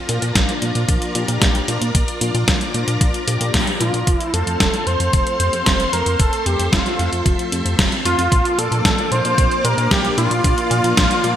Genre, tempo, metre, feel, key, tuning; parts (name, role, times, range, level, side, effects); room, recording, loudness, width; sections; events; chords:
italo disco; 113 BPM; 4/4; straight; F major; A4 = 445 Hz
string machine, full ensemble; sustained chords; 0.0-11.4 s; Bb3 to D6; -25 LUFS; equal; ensemble chorus
mellow synth brass; stabs; 0.1-11.4 s; F3 to G4; -28 LUFS; left 2 dB; chorus, digital delay
chorused synth bass; bass; 0.1-11.3 s; F1 to Bb2; -22 LUFS; equal
detuned 8-bit digital drum machine; drums; 0.1-11.3 s; hi-hat, snare drum; -20 LUFS; equal; small room ambience, gated reverb
electronic kick drum; drums; 0.4-11.1 s; -19 LUFS; equal; small room ambience
wide unison lead; melody; 3.8-11.4 s; F4 to C5; -20 LUFS; equal; digital delay
moderate plate reverb, RT60 1.7 s, digital ambience; bright 1980s-style digital production; -15 LUFS; side -10 dB against mid
0.0-4.1 A section; 4.1-11.4 B section
band accent 3.5; filter sweep on analog polysynth 4.1-11.4
0.0 Bb; 4.1 F; 8.3 Bb